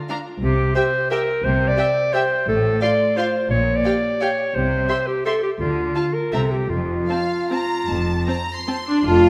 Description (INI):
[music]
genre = classical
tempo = 144-192 BPM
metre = 3/4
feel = rubato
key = F major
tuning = A4 = 439 Hz
[part]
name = bright clarinet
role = second line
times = 0.0-9.3 s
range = F4 to D5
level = -24 LUFS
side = equal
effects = none
[part]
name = dark symphonic violin section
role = melody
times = 0.1-8.8 s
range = G5 to C6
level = -34 LUFS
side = equal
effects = none
[part]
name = clear symphonic violin section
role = second line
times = 0.1-9.0 s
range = E5 to C6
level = -33 LUFS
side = equal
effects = none
[part]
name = clear symphonic viola section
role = accompaniment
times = 0.1-9.3 s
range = C4 to G4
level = -25 LUFS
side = equal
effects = none
[part]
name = rich symphonic cello section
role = bass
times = 0.4-9.3 s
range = F2 to D3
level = -27 LUFS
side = equal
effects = none
[part]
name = rich symphonic double bass section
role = bass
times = 0.4-9.3 s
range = F1 to D2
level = -29 LUFS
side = equal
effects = none
[part]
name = hollow flute section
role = second line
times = 9.0-9.3 s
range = A5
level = -26 LUFS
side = equal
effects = none
[part]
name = warm French horn section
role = sustained chords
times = 9.0-9.3 s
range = A3 to F4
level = -25 LUFS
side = equal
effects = none
[sound]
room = wet scoring stage reverb, RT60 1.7 s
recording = none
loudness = -21 LUFS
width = mono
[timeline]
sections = 0.0-9.0 A section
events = none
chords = 0.4 C5; 2.5 F/A; 3.5 Gdim/Bb; 4.5 C5; 5.6 Dm; 6.3 C7; 6.7 F